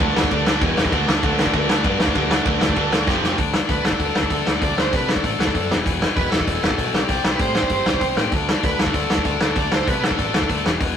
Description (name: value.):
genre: punk rock.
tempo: 194 BPM.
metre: 4/4.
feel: straight.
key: unclear.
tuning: A4 = 438 Hz.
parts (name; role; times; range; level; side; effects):
distorted electric guitar; riff; 0.0-3.4 s; E2 to D4; -23 LUFS; right 6 dB; overdrive.
tight distorted guitar; riff; 0.0-11.0 s; E2 to D4; -23 LUFS; left 5 dB; distortion.
growling picked electric bass; bass; 0.0-11.0 s; E1 to C3; -27 LUFS; equal; overdrive.
loose indie drum kit; drums; 0.0-10.9 s; hi-hat, kick drum, ride cymbal, snare drum; -20 LUFS; equal; none.
bluesy overdriven lead guitar; melody; 3.7-10.6 s; A4 to D5; -25 LUFS; right 3 dB; distortion, ping-pong delay.
room: light reverb.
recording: rough rehearsal-room recording, tube saturation.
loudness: -17 LUFS.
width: side -8 dB against mid.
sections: 0.0-3.4 A section; 3.4-11.0 B section.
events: drum fill 3.1-3.4.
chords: 0.0 D5; 0.6 E5; 0.9 D5; 3.1 F5; 3.4 D5; 5.7 E5; 6.9 C5; 8.3 D5.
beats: 0.01 0.31 0.62 | 0.93 1.24 1.54 1.85 | 2.16 2.47 2.77 3.08 | 3.39 3.70 4.01 4.32 | 4.62 4.93 5.24 5.55 | 5.86 6.17 6.48 6.79 | 7.10 7.41 7.71 8.02 | 8.33 8.64 8.95 9.26 | 9.57 9.88 10.19 10.50 | 10.81.